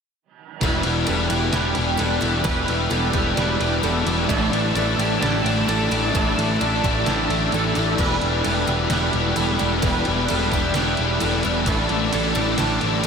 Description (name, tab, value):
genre	rock, shoegaze and dream pop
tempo	130 BPM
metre	4/4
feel	straight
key	E minor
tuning	A4 = 440 Hz
part	phased analog pad	sustained chords	0.6-13.1 s	D5 to E6	-28 LUFS	equal	phaser, chorus
part	picked twelve-string acoustic guitar	arpeggios	0.6-13.1 s	G4 to B4	-31 LUFS	right 2 dB	analog chorus, analog delay
part	biting overdriven guitar	riff	0.6-13.1 s	A2 to E4	-24 LUFS	left 7 dB	ensemble chorus
part	distorted electric guitar	riff	0.6-13.1 s	E2 to A3	-28 LUFS	left 1 dB	distortion
part	twangy electric guitar	riff	0.6-13.1 s	A2 to B4	-26 LUFS	right 7 dB	reverse reverb
part	fuzz picked electric bass	bass	0.6-13.1 s	E1 to A1	-25 LUFS	equal	overdrive
part	detuned 8-bit digital drum machine	drums	0.6-13.1 s	crash cymbal, kick drum, ride cymbal, snare drum	-28 LUFS	right 1 dB	none
room	wet huge ambient reverb, RT60 8.1 s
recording	dreamy mix soaked in reverb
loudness	-18 LUFS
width	side -6 dB against mid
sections	0.6-13.1 A section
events	none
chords	0.6 Em7; 4.3 Asus4; 8.0 Em7; 11.7 Asus4